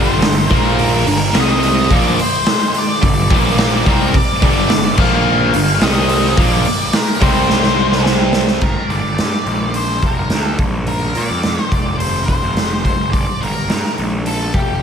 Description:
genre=quiet-loud alternative rock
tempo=107 BPM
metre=4/4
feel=straight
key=G minor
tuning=A4 = 440 Hz
part: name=octave-fuzz lead guitar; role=melody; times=0.0-14.8 s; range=G4 to F5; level=-20 LUFS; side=left 2 dB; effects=distortion, slapback echo
part: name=biting overdriven guitar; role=riff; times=0.0-8.6 s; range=G2 to C4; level=-20 LUFS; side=right 1 dB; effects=slapback echo
part: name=tight distorted guitar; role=riff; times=0.0-8.6 s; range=G2 to C4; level=-20 LUFS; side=equal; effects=distortion
part: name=fuzz picked electric bass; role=bass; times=0.0-14.8 s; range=F1 to Bb2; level=-20 LUFS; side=equal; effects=overdrive
part: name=raw garage drum kit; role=drums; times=0.2-14.7 s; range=crash cymbal, hi-hat, kick drum, snare drum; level=-16 LUFS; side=equal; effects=none
room=moderate lush hall reverb, RT60 1.7 s, studio ambience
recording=big arena sound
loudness=-12 LUFS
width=side -7 dB against mid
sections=0.0-8.6 A section; 8.6-14.8 B section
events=drum fill 7.5-8.6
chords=0.0 G5; 0.5 Bb5; 1.1 Gm; 1.3 C5; 1.9 Gm; 3.3 Bb5; 3.9 G5; 5.0 Bb5; 5.5 G5; 5.8 C5; 6.4 Bb; 7.2 C5; 8.6 Gm; 10.6 Bb; 11.7 F5; 13.1 Gm

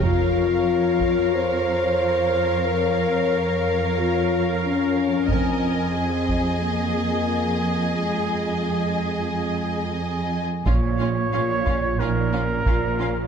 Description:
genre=cinematic, epic orchestral film score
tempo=90 BPM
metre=4/4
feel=straight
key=unclear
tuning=A4 = 440 Hz
part: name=warm symphonic violin section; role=melody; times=0.0-13.1 s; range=F5 to Ab5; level=-31 LUFS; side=left 4 dB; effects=none
part: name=rich studio violin section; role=second line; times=0.0-13.1 s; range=F4 to Eb5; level=-31 LUFS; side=left 1 dB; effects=none
part: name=clear studio viola section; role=accompaniment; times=0.0-13.1 s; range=Db4 to Bb4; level=-30 LUFS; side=right 2 dB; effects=none
part: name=mellow French horn section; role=sustained chords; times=0.0-13.3 s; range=Ab3 to C5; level=-24 LUFS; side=left 5 dB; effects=none
part: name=rich symphonic cello section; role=bass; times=0.0-13.2 s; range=F2 to Bb2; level=-26 LUFS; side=right 4 dB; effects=none
part: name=rich symphonic double bass section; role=bass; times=0.0-0.6, 5.3-5.9, 10.7-13.2 s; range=F1 to Bb1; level=-27 LUFS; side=right 5 dB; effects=none
part: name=taiko ensemble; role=drums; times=0.0-1.3, 5.3-6.6, 10.7-13.3 s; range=none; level=-25 LUFS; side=right 1 dB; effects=none
part: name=warm trumpet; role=stabs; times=10.7-13.3 s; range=Bb4 to Db5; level=-26 LUFS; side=right 2 dB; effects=none
room=moderate concert hall reverb, RT60 2.3 s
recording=none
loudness=-20 LUFS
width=side -7 dB against mid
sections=0.0-10.7 A section; 10.7-13.3 B section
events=none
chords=0.0 Bbm/F; 5.3 Ab/F; 10.7 Bbm

